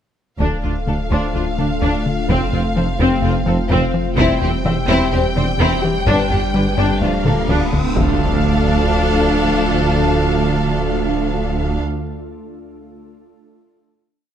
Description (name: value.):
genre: cinematic, hybrid orchestral and electronic film score.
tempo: 127 BPM.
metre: 4/4.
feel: straight.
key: D minor.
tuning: A4 = 440 Hz.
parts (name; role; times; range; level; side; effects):
warm symphonic violin section; melody; 0.4-11.8 s; F5 to G5; -26 LUFS; left 3 dB; none.
warm symphonic violin section; second line; 0.4-11.8 s; C4 to C5; -24 LUFS; left 2 dB; none.
rich symphonic viola section; accompaniment; 0.4-11.8 s; C4 to D4; -24 LUFS; equal; none.
dark French horn section; sustained chords; 0.4-11.8 s; F3 to C5; -26 LUFS; left 4 dB; none.
glassy FM pad; sustained chords; 0.6-11.8 s; G3 to C5; -24 LUFS; left 1 dB; ensemble chorus, built-in reverb.
tight sequencer bass; riff; 0.4-7.9 s; D2 to G3; -22 LUFS; left 2 dB; none.
mellow tuba; bass; 0.4-11.8 s; E1 to D2; -25 LUFS; right 4 dB; none.
pure sine sub bass; bass; 0.4-11.8 s; D1 to G1; -26 LUFS; equal; none.
rich chamber double bass section; bass; 0.4-11.8 s; E1 to D2; -25 LUFS; right 3 dB; none.
rich symphonic cello section; bass; 0.4-11.8 s; D2 to G2; -25 LUFS; right 2 dB; none.
taiko ensemble; drums; 0.4-8.9 s; none; -23 LUFS; equal; none.
dark baby grand piano; texture; 1.1-8.0 s; G3 to C6; -30 LUFS; left 3 dB; none.
riser and impact; sound effects; 6.3-9.9 s; none; -27 LUFS; equal; none.
room: light reverb.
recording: close, detailed microphones.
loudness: -15 LUFS.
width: side -9 dB against mid.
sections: 0.4-8.0 theme; 8.0-11.7 final chord.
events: riser 6.3-8.0; drum fill 7.3-8.0; impact 8.0-9.9.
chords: 0.4 Dm; 2.3 F; 4.2 C/E; 6.1 G; 7.0 Dm.